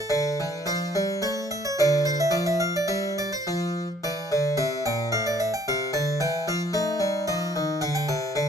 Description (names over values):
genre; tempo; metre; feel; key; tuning
classical, baroque-style suite movement for harpsichord; 110 BPM; 3/4; rubato; D minor; A4 = 440 Hz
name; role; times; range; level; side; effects
harpsichord; solo; 0.0-8.5 s; A2 to A5; -23 LUFS; equal; none
room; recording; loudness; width
light reverb; close, detailed microphones; -23 LUFS; side -6 dB against mid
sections
0.1-8.5 A section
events
none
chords
0.1 Dm; 1.2 N.C.; 1.8 Dm; 3.4 F5; 4.5 C7; 5.1 F/A; 6.7 Ebadd9; 7.8 D5